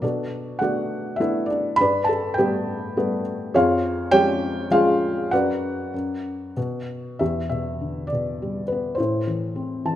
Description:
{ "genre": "classical, lyrical solo piano", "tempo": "92-106 BPM", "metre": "3/4", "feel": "rubato", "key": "B minor", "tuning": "A4 = 440 Hz", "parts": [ { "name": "felt-muted upright piano", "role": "solo", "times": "0.0-10.0 s", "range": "E2 to B5", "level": "-21 LUFS", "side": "equal", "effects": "none" } ], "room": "moderate recital hall reverb, RT60 1.7 s", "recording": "minimal, uncompressed stereo recording", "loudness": "-21 LUFS", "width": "side -12 dB against mid", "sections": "0.0-7.2 A section; 7.2-10.0 B section", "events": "felt piano fill 9.6-10.0", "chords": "0.0 Bm7; 1.8 Gadd9; 3.5 C#/E#; 5.3 Bm/F#; 6.6 N.C.; 7.2 Em7; 9.0 Am" }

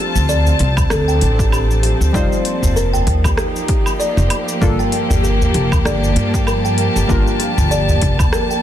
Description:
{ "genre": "organic downtempo", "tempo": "97 BPM", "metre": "4/4", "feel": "swing 57% on 16ths", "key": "G minor", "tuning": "A4 = 440 Hz", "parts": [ { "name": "dark chamber string section", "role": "sustained chords", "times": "0.0-8.6 s", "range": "F3 to A5", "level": "-21 LUFS", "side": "equal", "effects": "sidechain pumping" }, { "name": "kalimba", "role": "arpeggios", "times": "0.0-8.6 s", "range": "G4 to G5", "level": "-22 LUFS", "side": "equal", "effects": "ping-pong delay" }, { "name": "upright bass", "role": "bass", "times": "0.2-8.2 s", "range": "F1 to G2", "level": "-17 LUFS", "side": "equal", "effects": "sidechain pumping" }, { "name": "organic electronic drum kit", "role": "drums", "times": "0.2-8.6 s", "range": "hi-hat, rim click, shaker, woodblock", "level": "-24 LUFS", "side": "equal", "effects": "none" }, { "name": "udu", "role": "percussion", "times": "0.2-8.3 s", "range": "none", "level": "-20 LUFS", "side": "equal", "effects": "none" }, { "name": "electronic kick drum", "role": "drums", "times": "0.8-8.3 s", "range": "none", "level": "-19 LUFS", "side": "equal", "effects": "overdrive" }, { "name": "deep mellow chord stab", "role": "accompaniment", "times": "2.1-8.6 s", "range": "G3 to C5", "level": "-24 LUFS", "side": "left 2 dB", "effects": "chorus, sidechain pumping, ping-pong delay" } ], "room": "light reverb, studio reverb", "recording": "dense, heavily limited modern master", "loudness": "-13 LUFS", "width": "side -11 dB against mid", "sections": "0.0-8.6 A section", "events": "none", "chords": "0.0 Dm7; 2.1 F9sus4; 4.6 Gm9" }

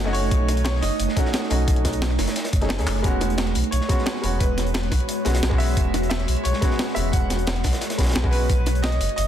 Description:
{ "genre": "liquid drum and bass", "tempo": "176 BPM", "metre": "4/4", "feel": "straight", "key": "E major", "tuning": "A4 = 440 Hz", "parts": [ { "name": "warm baby grand piano", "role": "accompaniment", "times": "0.0-8.5 s", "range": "G#3 to G#4", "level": "-29 LUFS", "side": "left 1 dB", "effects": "ping-pong delay" }, { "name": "ethereal airy pad", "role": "sustained chords", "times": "0.0-9.3 s", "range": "G#3 to C#5", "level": "-29 LUFS", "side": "right 2 dB", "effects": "ensemble chorus, built-in reverb, sidechain pumping" }, { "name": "sub bass with octave", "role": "bass", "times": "0.0-9.3 s", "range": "E1 to D#2", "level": "-23 LUFS", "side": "equal", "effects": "none" }, { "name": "bright grand piano", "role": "melody", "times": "0.1-9.3 s", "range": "B4 to F#5", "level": "-30 LUFS", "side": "right 1 dB", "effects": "digital delay" }, { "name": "breakbeat sampler-style drum kit", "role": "drums", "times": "0.1-9.2 s", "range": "handclaps, hi-hat, snare drum", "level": "-28 LUFS", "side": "equal", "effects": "none" }, { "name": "crunchy breakbeat drum kit", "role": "drums", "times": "0.1-9.3 s", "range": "hi-hat, snare drum", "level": "-34 LUFS", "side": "equal", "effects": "high-pass filter on hats, high-pass filter on snare, high-pass filter on room" }, { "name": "electronic kick drum", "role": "drums", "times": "0.3-8.6 s", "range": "none", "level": "-22 LUFS", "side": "equal", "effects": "none" } ], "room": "light reverb", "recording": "dense, heavily limited modern master", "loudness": "-19 LUFS", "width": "side -10 dB against mid", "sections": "0.0-3.0 A section; 3.0-9.3 A section", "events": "drop 0.0-3.0, 3.0-9.3; drum fill 2.9", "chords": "0.0 B9; 3.0 E69; 8.5 B9" }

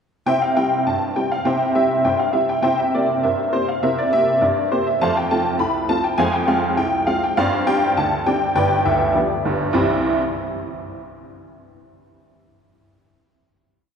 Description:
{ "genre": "ragtime piano", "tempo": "101 BPM", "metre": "2/4", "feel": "straight", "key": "C major", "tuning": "A4 = 440 Hz", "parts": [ { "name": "honky-tonk upright piano", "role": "solo", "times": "0.3-10.2 s", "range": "D1 to B5", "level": "-17 LUFS", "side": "equal", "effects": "none" } ], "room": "wet church reverb, RT60 3.2 s", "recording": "recorded in a church or concert hall", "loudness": "-17 LUFS", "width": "side -7 dB against mid", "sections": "0.3-9.8 A section; 9.8-10.9 final chord", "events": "none", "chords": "0.3 C; 2.6 C7; 5.0 F; 6.2 Fm; 7.4 Gsus4; 8.6 G7; 9.8 C" }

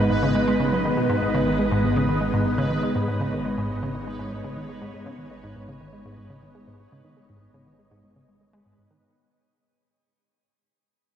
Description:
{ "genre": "ambient, sequencer-driven space music", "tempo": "121 BPM", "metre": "4/4", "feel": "straight", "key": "G# minor", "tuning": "A4 = 440 Hz", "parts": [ { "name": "string machine, full ensemble", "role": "sustained chords", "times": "0.0-9.0 s", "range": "G#3 to D#5", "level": "-26 LUFS", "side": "equal", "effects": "ensemble chorus, shimmer reverb" }, { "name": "analog pluck", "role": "riff", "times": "0.0-9.0 s", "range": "G#2 to G#3", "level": "-26 LUFS", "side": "equal", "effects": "chorus, analog delay" }, { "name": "fat analog bass", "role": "bass", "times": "0.0-9.0 s", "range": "G#1", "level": "-36 LUFS", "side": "equal", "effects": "none" }, { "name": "bubbling stepped-filter texture", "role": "texture", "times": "0.0-9.0 s", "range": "B4", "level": "-32 LUFS", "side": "right 2 dB", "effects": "chorus, built-in reverb, shimmer reverb" } ], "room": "wet spring reverb, RT60 2.6 s", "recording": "echo-heavy mix, cassette tape", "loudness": "-21 LUFS", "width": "side -9 dB against mid", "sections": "0.0-9.0 A section", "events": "fade-out on analog synth bass 0.0-9.0; fade-out 0.0-9.0; filter sweep on synth arpeggio sound 0.0-9.0", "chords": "0.0 G#m" }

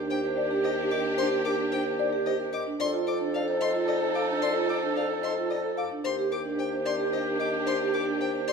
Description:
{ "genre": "classical, minimalist pattern music", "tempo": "111 BPM", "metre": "3/4", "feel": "straight", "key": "unclear", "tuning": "A4 = 442 Hz", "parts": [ { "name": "warm oboe", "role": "second line", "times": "0.0-8.5 s", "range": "G4 to A4", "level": "-35 LUFS", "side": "right 4 dB", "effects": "none" }, { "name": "rich studio string section", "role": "sustained chords", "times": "0.0-8.5 s", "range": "D4 to A4", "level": "-34 LUFS", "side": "left 1 dB", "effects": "none" }, { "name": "vibraphone with soft mallets", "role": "arpeggios", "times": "0.0-8.5 s", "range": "D4 to C5", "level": "-31 LUFS", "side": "right 6 dB", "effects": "none" }, { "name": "dark bassoon", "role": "bass", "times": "0.0-8.5 s", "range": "Eb2 to F2", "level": "-31 LUFS", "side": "equal", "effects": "none" }, { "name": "folk marimba with soft mallets", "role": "melody", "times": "0.1-8.5 s", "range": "Bb4 to F5", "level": "-32 LUFS", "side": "left 8 dB", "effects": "none" }, { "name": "rich violin", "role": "arpeggios", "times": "0.1-8.5 s", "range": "Eb5 to D6", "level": "-37 LUFS", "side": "left 4 dB", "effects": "none" } ], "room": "wet scoring stage reverb, RT60 1.7 s", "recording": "minimal, uncompressed stereo recording", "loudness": "-25 LUFS", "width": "side -5 dB against mid", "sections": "0.0-8.5 A section", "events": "none", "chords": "0.0 Ebmaj7; 2.8 F7; 6.0 Ebmaj7" }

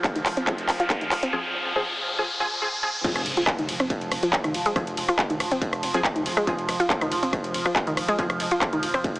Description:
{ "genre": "driving peak-time techno", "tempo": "140 BPM", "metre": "4/4", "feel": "straight", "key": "F minor", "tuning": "A4 = 441 Hz", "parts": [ { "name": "overtone-sweeping drone", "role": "drone", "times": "0.0-9.2 s", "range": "F3", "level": "-32 LUFS", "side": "right 1 dB", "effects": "chorus, built-in reverb, phaser, sidechain pumping" }, { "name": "electronic kick drum", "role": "drums", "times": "0.0-9.1 s", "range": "none", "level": "-29 LUFS", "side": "equal", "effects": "distortion" }, { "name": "techno drum kit", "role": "drums", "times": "0.0-9.2 s", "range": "crash cymbal, handclaps, hi-hat, ride cymbal, rim click", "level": "-27 LUFS", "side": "equal", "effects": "sidechain pumping on hats, sidechain pumping on cymbals" }, { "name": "riser and impact", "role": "sound effects", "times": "0.0-4.8 s", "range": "none", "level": "-30 LUFS", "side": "left 1 dB", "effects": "none" }, { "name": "analog pluck", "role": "riff", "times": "0.2-9.0 s", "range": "Eb3 to F4", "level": "-27 LUFS", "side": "equal", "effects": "chorus, tube saturation, cassette tape, sidechain pumping, digital delay" }, { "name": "rave stab", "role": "stabs", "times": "0.5-8.3 s", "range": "F3 to Ab4", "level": "-30 LUFS", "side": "equal", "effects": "chorus, built-in reverb, sidechain pumping, digital delay" }, { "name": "saturated sub bass", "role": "bass", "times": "3.2-9.2 s", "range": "F1", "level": "-44 LUFS", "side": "equal", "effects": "sidechain pumping, low-pass filter" } ], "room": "moderate huge ambient reverb, RT60 7.7 s", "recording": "heavily compressed radio sound, multiband compression, high-pass filter, small speaker sound", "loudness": "-22 LUFS", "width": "side -19 dB against mid", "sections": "0.0-3.0 A section; 3.0-9.2 B section", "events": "build-up 0.0-3.0; drum fill 0.0-1.3; riser 0.0-3.0; filter sweep on synth arpeggio sound 0.0-3.0; filter sweep on synth stab 0.0-3.0; filter sweep 0.0-3.0; drop 3.0-9.2; impact 3.0-4.8", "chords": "0.0 Fm" }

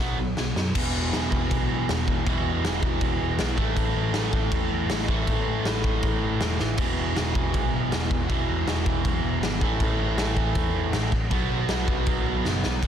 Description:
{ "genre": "punk rock", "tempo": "159 BPM", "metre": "4/4", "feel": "straight", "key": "unclear", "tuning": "A4 = 439 Hz", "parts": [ { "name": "distorted electric guitar", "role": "riff", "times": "0.0-12.9 s", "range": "E2 to B3", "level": "-27 LUFS", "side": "right 1 dB", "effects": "distortion" }, { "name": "overdriven picked electric bass", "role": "bass", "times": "0.0-12.9 s", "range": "E1 to B2", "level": "-29 LUFS", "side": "equal", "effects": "none" }, { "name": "raw garage drum kit", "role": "drums", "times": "0.4-12.9 s", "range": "crash cymbal, kick drum, snare drum, toms", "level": "-26 LUFS", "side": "equal", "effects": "none" } ], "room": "little or no reverb", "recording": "dense, heavily limited modern master", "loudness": "-22 LUFS", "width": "side -9 dB against mid", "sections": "0.8-12.8 A section", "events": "drum fill 0.0-0.8, 6.6, 12.4-12.8", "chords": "0.0 B5; 0.8 E5; 3.6 A5; 6.8 E5; 9.6 A5; 11.3 B5" }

